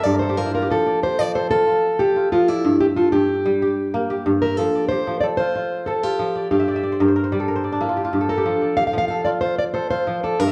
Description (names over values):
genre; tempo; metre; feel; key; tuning
west african traditional; 124 BPM (dotted quarters); 12/8; straight; F major; A4 = 441 Hz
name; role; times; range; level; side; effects
fingerpicked plugged-in steel-string acoustic guitar; melody; 0.0-10.5 s; E4 to F5; -22 LUFS; equal; none
kora; arpeggios; 0.0-10.5 s; G2 to F5; -24 LUFS; equal; none
room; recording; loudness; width
moderate recital hall reverb, RT60 1.6 s; small room ambience; -20 LUFS; mono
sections
0.7-10.5 A section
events
kora fill 0.0-0.7, 6.5-8.5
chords
0.0 Gm; 0.7 F; 2.6 Gm; 4.6 F; 6.5 Gm; 8.5 F